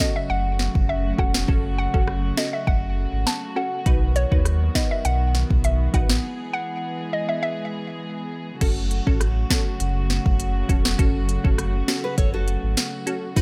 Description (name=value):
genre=dancehall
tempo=101 BPM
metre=4/4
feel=straight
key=F# dorian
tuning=A4 = 441 Hz
part: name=hollow square pluck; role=melody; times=0.0-7.9 s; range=C#5 to A5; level=-30 LUFS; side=equal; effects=chorus, digital delay
part: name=wavetable chord stab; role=accompaniment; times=0.0-13.4 s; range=C#4 to B4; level=-32 LUFS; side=equal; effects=none
part: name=warm studio string section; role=sustained chords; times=0.0-13.4 s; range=C#3 to G#4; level=-33 LUFS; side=equal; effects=none
part: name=afro-pop drum kit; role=drums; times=0.0-13.4 s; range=crash cymbal, hi-hat, kick drum, rim click, snare drum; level=-24 LUFS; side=equal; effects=none
part: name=sub bass with octave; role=bass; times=0.3-13.4 s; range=E1 to D#2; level=-26 LUFS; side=equal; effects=none
part: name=nylon-string guitar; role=arpeggios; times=11.9-13.2 s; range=F#4 to C#5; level=-33 LUFS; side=equal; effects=none
part: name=maracas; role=percussion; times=13.4 s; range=none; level=-33 LUFS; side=equal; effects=none
room=digital ambience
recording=none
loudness=-23 LUFS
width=mono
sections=0.0-8.6 A section; 8.6-13.4 B section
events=break 6.2-8.6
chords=0.0 F#m; 3.9 B; 6.2 E; 8.6 F#m